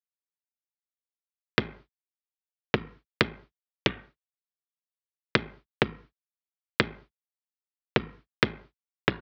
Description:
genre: downtempo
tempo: 92 BPM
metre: 4/4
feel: swing 57% on 16ths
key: none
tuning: none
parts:
  - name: electronic kick drum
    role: drums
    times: 1.6-9.2 s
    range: none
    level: -29 LUFS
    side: equal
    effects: none
room: little or no reverb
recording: AM radio sound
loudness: -30 LUFS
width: mono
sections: 1.6-9.2 A section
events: none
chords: none

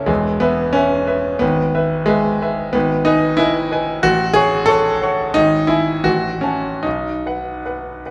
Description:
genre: classical, romantic character piece for solo piano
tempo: 71-94 BPM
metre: 2/4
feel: rubato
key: unclear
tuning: A4 = 441 Hz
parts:
  - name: clear concert grand piano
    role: solo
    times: 0.0-8.1 s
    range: E1 to C#6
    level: -17 LUFS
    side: equal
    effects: none
room: wet scoring stage reverb, RT60 1.7 s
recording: none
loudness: -17 LUFS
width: mono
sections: 0.0-8.1 A section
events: none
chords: 0.1 E5; 1.4 E/G#; 2.8 G#m; 4.0 F#m/A; 5.4 E/G#; 6.1 F#m/A; 6.8 B

